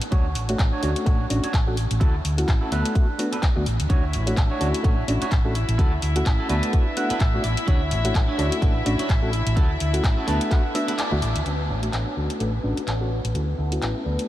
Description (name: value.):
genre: filtered disco house.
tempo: 127 BPM.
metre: 4/4.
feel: swing 57% on 16ths.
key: D major.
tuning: A4 = 440 Hz.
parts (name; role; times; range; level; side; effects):
house drum kit; drums; 0.0-14.3 s; handclaps, hi-hat; -31 LUFS; left 1 dB; sidechain pumping on hats, sidechain pumping on cymbals.
reed electric piano; accompaniment; 0.1-14.3 s; A3 to C#5; -28 LUFS; left 1 dB; fast tremolo, phaser, sidechain pumping, low-pass filter.
clean electric guitar; riff; 0.1-14.3 s; D4 to A5; -31 LUFS; right 4 dB; spring reverb, sidechain pumping, low-pass filter.
hollow-body short-scale fingered electric bass; bass; 0.1-14.2 s; A1 to D2; -25 LUFS; equal; sidechain pumping, low-pass filter.
electronic kick drum; drums; 0.1-10.6 s; none; -20 LUFS; equal; none.
rich chamber string section; sustained chords; 3.9-14.3 s; B3 to E5; -31 LUFS; left 2 dB; vintage 12-bit sampler grit, sidechain pumping, low-pass filter.
room: light reverb, digital ambience.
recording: none.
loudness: -20 LUFS.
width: side -14 dB against mid.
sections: 0.0-11.5 A section; 11.5-14.3 B section.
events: filter sweep 0.0-11.5, 11.5-14.3; clean electric guitar fill 6.7-7.7, 10.0-11.5; kick drops out 11.0-11.5; band accent 11.0.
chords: 0.1 Dmaj7; 2.7 Bm7/D; 3.9 Dmaj7; 6.5 Bm7/D; 7.7 Dmaj7; 10.3 Bm7/D; 11.5 Dmaj7.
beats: | 0.12 0.59 1.06 1.54 | 2.01 2.48 2.96 3.43 | 3.90 4.37 4.84 5.32 | 5.79 6.26 6.73 7.21 | 7.68 8.15 8.62 9.10 | 9.57 10.04 10.51 10.99 | 11.46 11.93 12.40 12.88 | 13.35 13.82.